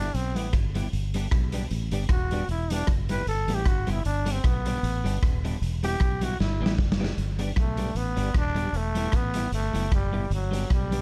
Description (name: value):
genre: ska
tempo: 154 BPM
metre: 4/4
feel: swing 54% on 8ths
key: G major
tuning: A4 = 440 Hz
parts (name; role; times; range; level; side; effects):
- growling trombone; melody; 0.0-11.0 s; F#3 to B4; -33 LUFS; equal; tube saturation
- electric guitar at the edge of break-up; accompaniment; 0.0-11.0 s; G3 to G4; -34 LUFS; equal; ensemble chorus
- fingered electric bass; bass; 0.0-11.0 s; Eb1 to B1; -31 LUFS; equal; none
- raw garage drum kit; drums; 0.1-11.0 s; hi-hat, kick drum, rim click, snare drum; -30 LUFS; equal; none
room: little or no reverb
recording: none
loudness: -26 LUFS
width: mono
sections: 0.0-7.2 A section; 7.2-11.0 A section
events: trombone solo 0.0-7.2, 7.2-11.0; drum fill 6.4-7.2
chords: 0.0 Em; 0.9 G; 2.5 Em; 4.1 G; 5.6 Em; 7.2 G; 8.7 Em; 10.3 G